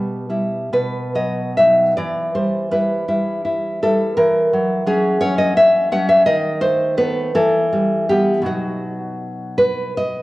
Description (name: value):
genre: romantic piece for solo classical guitar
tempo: 56 BPM (dotted quarters)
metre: 6/8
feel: uneven beats, rubato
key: E minor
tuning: A4 = 443 Hz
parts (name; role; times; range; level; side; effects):
- nylon-string guitar; solo; 0.0-10.2 s; B2 to F#5; -16 LUFS; equal; none
room: wet recital hall reverb, RT60 1.7 s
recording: worn, warbling old tape, cassette tape, warbly pitch drift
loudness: -15 LUFS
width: side -18 dB against mid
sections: 0.0-2.0 A section; 2.0-10.2 B section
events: none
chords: 0.0 Em/B; 0.7 B; 2.0 Em; 4.2 F#7/E; 6.3 B7/D#; 7.3 Em; 8.5 B